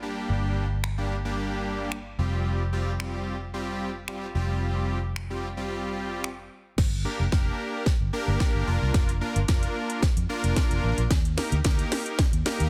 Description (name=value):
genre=dance-pop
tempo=111 BPM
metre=4/4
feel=straight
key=G minor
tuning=A4 = 441 Hz
part: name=big bright polysynth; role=accompaniment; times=0.0-12.7 s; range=G3 to Bb4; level=-33 LUFS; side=equal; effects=sidechain pumping
part: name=vintage muted fingered electric bass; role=bass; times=0.0-12.7 s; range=F1 to F2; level=-30 LUFS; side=equal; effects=sidechain pumping
part: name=house drum kit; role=drums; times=0.8-12.7 s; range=crash cymbal, finger snaps, hi-hat, kick drum, snare drum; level=-28 LUFS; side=equal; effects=soft clipping on snare
room=light reverb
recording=dense, heavily limited modern master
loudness=-27 LUFS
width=mono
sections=0.0-6.8 A section; 6.8-12.7 B section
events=build-up 6.8-12.7; drum fill 6.8-12.7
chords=0.0 Gm; 2.2 Fsus2; 6.8 Gm; 8.7 Bb/F; 11.1 Eb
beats=| 0.29 0.84 1.38 1.92 | 2.46 3.00 3.54 4.08 | 4.62 5.16 5.70 6.24 | 6.78 7.32 7.86 8.40 | 8.94 9.48 10.03 10.56 | 11.11 11.65 12.19